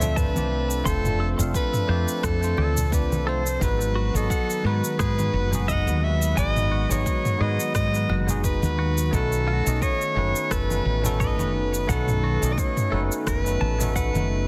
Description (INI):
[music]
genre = sunset chillout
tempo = 87 BPM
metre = 4/4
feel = swing 55% on 16ths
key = unclear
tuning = A4 = 435 Hz
[part]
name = warm soprano saxophone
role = melody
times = 0.0-14.5 s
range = A4 to E5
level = -30 LUFS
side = equal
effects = delay
[part]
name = bell-like tine electric piano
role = accompaniment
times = 0.0-14.5 s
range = D#3 to F5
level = -33 LUFS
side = equal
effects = delay
[part]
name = lush unison pad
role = sustained chords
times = 0.0-14.5 s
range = D#3 to B4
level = -35 LUFS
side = equal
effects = chorus
[part]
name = woody fretless electric bass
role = bass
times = 0.0-14.5 s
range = F1 to G#2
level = -27 LUFS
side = equal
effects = none
[part]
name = deep house drum kit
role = drums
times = 0.0-14.3 s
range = cabasa, rim click, toms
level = -33 LUFS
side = equal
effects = soft clipping on snare
[part]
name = congas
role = percussion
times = 0.0-14.3 s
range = none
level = -34 LUFS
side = equal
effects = none
[part]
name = direct-recorded clean electric guitar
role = arpeggios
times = 0.2-14.3 s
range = F#4 to C6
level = -37 LUFS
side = equal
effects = delay
[part]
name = electronic kick drum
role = drums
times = 0.2-14.1 s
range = none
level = -29 LUFS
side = equal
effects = none
[sound]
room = light reverb, digital ambience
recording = dense, heavily limited modern master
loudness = -23 LUFS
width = mono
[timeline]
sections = 0.0-14.5 A section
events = none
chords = 0.0 F6; 3.6 G#m7; 9.1 B9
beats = 0.17 | 0.85 1.54 2.23 2.92 | 3.61 4.30 4.99 5.68 | 6.37 7.06 7.75 8.44 | 9.13 9.82 10.51 11.20 | 11.89 12.58 13.27 13.96